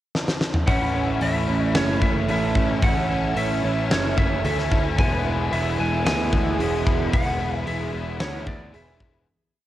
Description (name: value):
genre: rock, shoegaze and dream pop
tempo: 112 BPM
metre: 4/4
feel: straight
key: A major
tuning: A4 = 440 Hz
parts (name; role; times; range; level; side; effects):
- huge arena drum kit; drums; 0.1-9.1 s; hi-hat, kick drum, snare drum, toms; -24 LUFS; equal; cassette tape
- lightly driven lead guitar; melody; 0.7-9.1 s; C#5 to G#5; -28 LUFS; right 1 dB; cassette tape, tape echo
- icy glass pad; sustained chords; 1.6-9.2 s; E3 to E5; -32 LUFS; right 1 dB; chorus, built-in reverb, cassette tape
- fingerpicked twelve-string acoustic guitar; arpeggios; 0.7-9.3 s; B3 to A4; -31 LUFS; right 5 dB; analog chorus, cassette tape, tape echo
- biting overdriven guitar; riff; 0.7-9.3 s; A2 to E4; -29 LUFS; left 6 dB; ensemble chorus, cassette tape
- electric guitar through a small old amp; riff; 0.7-9.3 s; A2 to E4; -30 LUFS; right 5 dB; reverse reverb, cassette tape
- fuzz picked electric bass; bass; 0.7-9.2 s; E1 to D2; -26 LUFS; equal; overdrive
room: light reverb, small room ambience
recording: home recording on cassette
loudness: -20 LUFS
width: side -14 dB against mid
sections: 0.0-0.7 pickup bar; 0.7-9.3 verse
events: drum fill 0.1-0.7; fade-out 7.1-9.3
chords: 0.0 N.C.; 0.7 A; 5.0 E